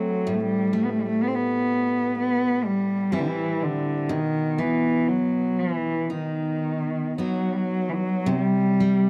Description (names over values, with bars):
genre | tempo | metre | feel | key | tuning
celtic folk, Celtic slow air | 53-65 BPM | 4/4 | rubato | unclear | A4 = 438 Hz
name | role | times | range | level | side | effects
warm cello | melody | 0.0-9.1 s | D3 to C4 | -25 LUFS | equal | none
picked steel-string acoustic guitar | accompaniment | 0.0-9.1 s | A2 to F#4 | -30 LUFS | equal | none
room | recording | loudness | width
small room ambience | dry, close 1970s-style studio recording | -24 LUFS | mono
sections
0.0-8.3 A section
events
none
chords
0.3 Am7; 4.1 B; 8.3 C5